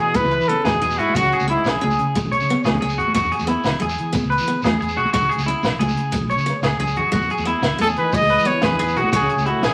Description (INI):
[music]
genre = highlife guitar band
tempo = 120 BPM (dotted quarters)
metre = 12/8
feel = straight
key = E major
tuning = A4 = 441 Hz
[part]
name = warm trumpet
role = melody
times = 0.0-2.0, 7.8-9.7 s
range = E4 to D#5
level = -22 LUFS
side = equal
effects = none
[part]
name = mellow trombone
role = second line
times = 0.0-2.0, 7.8-9.7 s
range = G#2 to G#3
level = -31 LUFS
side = equal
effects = none
[part]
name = picked steel-string acoustic guitar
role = accompaniment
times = 0.0-9.2 s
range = G#3 to D#4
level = -30 LUFS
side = equal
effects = none
[part]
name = electric guitar at the edge of break-up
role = arpeggios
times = 0.0-9.7 s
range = E4 to C#5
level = -24 LUFS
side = equal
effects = spring reverb
[part]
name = fingered electric bass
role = bass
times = 0.0-9.7 s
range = G#1 to E3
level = -29 LUFS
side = equal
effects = none
[part]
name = compact cocktail drum kit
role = drums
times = 0.1-9.7 s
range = hi-hat, kick drum, snare drum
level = -28 LUFS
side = equal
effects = none
[part]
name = congas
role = percussion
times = 0.2-9.7 s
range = none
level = -29 LUFS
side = equal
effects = none
[part]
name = shekere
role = percussion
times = 0.2-9.7 s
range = none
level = -34 LUFS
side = equal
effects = none
[sound]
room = wet studio reverb, RT60 0.7 s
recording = vinyl crackle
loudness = -19 LUFS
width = mono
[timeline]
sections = 0.0-9.7 A section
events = drum fill 6.3-7.1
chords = 0.0 E; 1.2 C#m; 3.1 E; 5.1 C#m; 7.1 E; 9.1 C#m